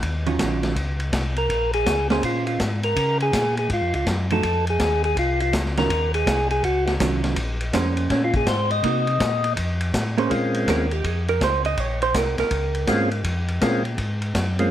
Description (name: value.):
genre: soul jazz organ trio.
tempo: 163 BPM.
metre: 4/4.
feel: swing 65% on 8ths.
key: Bb minor.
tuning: A4 = 439 Hz.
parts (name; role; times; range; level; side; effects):
mellow tonewheel organ; bass; 0.0-14.7 s; Bb1 to Db3; -25 LUFS; left 1 dB; slow rotary speaker.
vintage drum kit; drums; 0.0-14.6 s; hi-hat, kick drum, ride cymbal, snare drum; -26 LUFS; left 1 dB; none.
hollow-body jazz guitar; accompaniment; 0.3-13.2 s; Eb3 to Eb5; -24 LUFS; right 5 dB; none.
percussive tonewheel organ; melody; 1.4-14.7 s; Ab3 to Eb5; -22 LUFS; equal; slow rotary speaker.
room: moderate large studio reverb, RT60 1.1 s.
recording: none.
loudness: -20 LUFS.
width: side -11 dB against mid.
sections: 0.0-10.3 A section; 10.3-14.7 A section.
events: tonewheel organ solo 0.0-10.3; hollow-body jazz guitar solo 10.3-14.7.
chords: 0.0 Ebm9; 1.5 Bbm9; 4.4 Ebm9; 7.4 Bbm9; 8.8 Cm7b5; 9.6 F; 10.3 Bbm9.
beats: | 0.02 0.39 0.76 1.13 | 1.49 1.86 2.23 2.60 | 2.96 3.33 3.70 4.06 | 4.43 4.80 5.17 5.53 | 5.90 6.26 6.63 7.00 | 7.37 7.73 8.10 8.47 | 8.83 9.20 9.57 9.94 | 10.30 10.67 11.04 11.41 | 11.78 12.14 12.51 12.88 | 13.25 13.62 13.98 14.35.